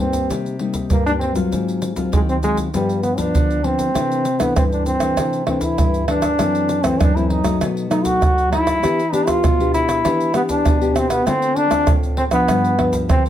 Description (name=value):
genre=samba and choro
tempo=98 BPM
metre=4/4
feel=straight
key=C major from 4.0 s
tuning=A4 = 440 Hz
part: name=clear trombone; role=melody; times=0.0-13.2 s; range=G3 to F#4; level=-19 LUFS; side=equal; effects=plate reverb
part: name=nylon-string guitar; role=accompaniment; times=0.0-13.3 s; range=F#2 to G4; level=-21 LUFS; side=left 2 dB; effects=none
part: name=egg shaker, surdo, pandeiro and tamborim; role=percussion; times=0.1-13.3 s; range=none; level=-20 LUFS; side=right 2 dB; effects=none
room=moderate studio reverb, RT60 0.5 s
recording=none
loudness=-16 LUFS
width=side -11 dB against mid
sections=0.0-4.0 A section; 4.0-13.3 B section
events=none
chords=0.0 Cm7; 1.5 Ab6; 2.7 G7; 4.0 C69; 6.4 F#m7b5; 7.6 B7; 8.8 Em7; 11.3 Dm7; 12.5 G7